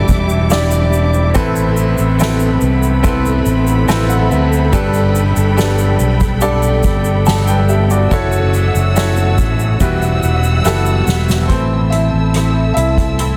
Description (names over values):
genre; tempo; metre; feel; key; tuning
pop ballad; 71 BPM; 4/4; straight; unclear; A4 = 439 Hz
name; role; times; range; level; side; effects
bright upright piano; accompaniment; 0.0-13.4 s; G2 to A5; -20 LUFS; equal; none
dark studio string section; sustained chords; 0.0-13.4 s; G3 to E6; -26 LUFS; equal; none
clean electric guitar; arpeggios; 0.0-13.4 s; E2 to A4; -24 LUFS; equal; analog chorus
fingered electric bass; bass; 0.0-13.4 s; E1 to D2; -17 LUFS; equal; none
soft-mallet drum kit; drums; 0.1-13.4 s; hi-hat, kick drum, ride cymbal, rim click, snare drum; -22 LUFS; equal; none
egg shaker; percussion; 0.1-11.5 s; none; -32 LUFS; equal; none
room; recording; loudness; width
light reverb, small room reverb; dense, heavily limited modern master; -14 LUFS; mono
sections
0.0-11.5 A section; 11.5-13.4 B section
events
upright piano fill 3.5-4.7; drum fill 10.7-11.5; upright piano solo 11.5-13.4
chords
0.0 Em7; 1.4 Amadd9; 4.7 Gadd9; 8.1 F#m7; 9.8 Emadd9; 11.5 Am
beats
0.51 | 1.35 2.20 3.04 3.89 | 4.73 5.58 6.42 7.27 | 8.12 8.96 9.80 10.65 | 11.49 12.34 13.19